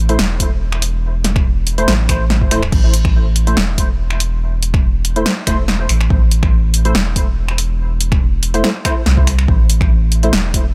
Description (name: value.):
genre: deep dubstep.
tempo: 142 BPM.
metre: 4/4.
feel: swing 54% on 16ths, half-time.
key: A minor.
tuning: A4 = 440 Hz.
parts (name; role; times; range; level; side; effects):
soft dub sub bass; bass; 0.0-10.7 s; E1 to C2; -18 LUFS; equal; none.
percussive organ stab; stabs; 0.1-10.3 s; A3 to C5; -25 LUFS; equal; ensemble chorus, dub echo.
deep house drum kit; drums; 0.1-10.6 s; crash cymbal, finger snaps, hi-hat, snare drum; -21 LUFS; equal; overdrive.
electronic kick drum; drums; 0.4-10.6 s; none; -18 LUFS; equal; overdrive.
room: digital ambience.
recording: none.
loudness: -15 LUFS.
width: mono.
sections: 0.0-10.7 A section.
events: none.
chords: 0.0 Am.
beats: 0.19 0.61 | 1.03 1.46 1.88 2.30 | 2.72 3.15 3.57 3.99 | 4.41 4.84 5.26 5.68 | 6.10 6.53 6.95 7.37 | 7.79 8.22 8.64 9.06 | 9.48 9.91 10.33.